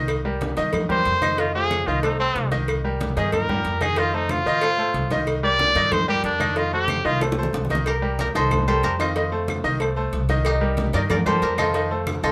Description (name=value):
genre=latin, salsa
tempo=185 BPM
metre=4/4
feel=straight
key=unclear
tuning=A4 = 439 Hz
part: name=bright grand piano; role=accompaniment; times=0.0-12.3 s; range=Eb3 to Eb5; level=-28 LUFS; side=equal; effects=none
part: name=upright bass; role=bass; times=0.0-12.3 s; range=C2 to A2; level=-29 LUFS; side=equal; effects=none
part: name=claves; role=percussion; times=0.1-12.2 s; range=none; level=-36 LUFS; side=equal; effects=none
part: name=congas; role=percussion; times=0.1-12.3 s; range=none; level=-33 LUFS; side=equal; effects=none
part: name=cowbell and bongos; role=percussion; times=0.1-12.2 s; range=none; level=-32 LUFS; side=equal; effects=none
part: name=clear trumpet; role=melody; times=0.9-7.2 s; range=C4 to D5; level=-24 LUFS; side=equal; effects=none
part: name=koto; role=melody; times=7.9-12.3 s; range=C4 to D5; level=-27 LUFS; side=equal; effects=none
room=moderate studio reverb, RT60 0.6 s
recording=none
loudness=-22 LUFS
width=mono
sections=0.0-7.9 A section; 7.9-12.3 B section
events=trumpet solo 0.0-7.9; drum fill 7.2-7.9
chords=0.1 Cm7; 1.4 F7; 2.7 Cm7; 4.0 F7; 5.3 Cm7; 6.6 F7; 7.9 Cm7; 9.2 F7; 10.4 Cm7; 11.7 F7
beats=| 0.09 0.41 0.74 1.06 | 1.39 1.71 2.03 2.36 | 2.68 3.01 3.33 3.65 | 3.98 4.30 4.62 4.95 | 5.27 5.59 5.92 6.24 | 6.57 6.89 7.21 7.54 | 7.86 8.19 8.51 8.83 | 9.16 9.48 9.80 10.13 | 10.45 10.77 11.10 11.42 | 11.74 12.07